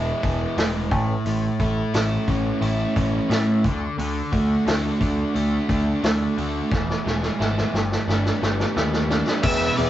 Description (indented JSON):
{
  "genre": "classic rock",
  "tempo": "88 BPM",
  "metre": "4/4",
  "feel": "straight",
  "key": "unclear",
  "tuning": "A4 = 436 Hz",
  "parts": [
    { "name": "crunchy overdriven guitar", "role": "riff", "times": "0.0-9.9 s", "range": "E2 to F#4", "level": "-25 LUFS", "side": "right 2 dB", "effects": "none" },
    { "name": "overdriven electric guitar", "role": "riff", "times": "0.0-9.9 s", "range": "E2 to G#4", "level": "-29 LUFS", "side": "left 4 dB", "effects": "none" },
    { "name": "growling picked electric bass", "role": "bass", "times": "0.0-9.9 s", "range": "E1 to A2", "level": "-25 LUFS", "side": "left 1 dB", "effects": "overdrive" },
    { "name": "vintage drum kit", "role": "drums", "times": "0.2-9.9 s", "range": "crash cymbal, hi-hat, kick drum, snare drum", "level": "-24 LUFS", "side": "equal", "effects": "none" },
    { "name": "octave-fuzz lead guitar", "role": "melody", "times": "9.4-9.9 s", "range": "D5 to E5", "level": "-24 LUFS", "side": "left 1 dB", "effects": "distortion" },
    { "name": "bluesy overdriven lead guitar", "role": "second line", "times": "9.4-9.9 s", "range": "B3", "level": "-28 LUFS", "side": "right 3 dB", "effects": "distortion" },
    { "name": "bright reed electric piano", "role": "accompaniment", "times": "9.4-9.9 s", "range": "G#4 to E5", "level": "-25 LUFS", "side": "left 2 dB", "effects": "none" }
  ],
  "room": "moderate small room ambience, RT60 0.5 s",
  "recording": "rough rehearsal-room recording, nothing above 7.9 kHz",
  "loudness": "-20 LUFS",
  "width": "side -12 dB against mid",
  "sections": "0.0-9.4 A section",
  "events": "drum fill 6.7-9.4",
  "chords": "0.0 E; 0.9 A; 3.6 D; 6.7 E; 7.7 G",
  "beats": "0.57 | 1.25 1.94 2.62 3.30 | 3.98 4.67 5.35 6.03 | 6.71 7.39 8.08 8.76 | 9.44"
}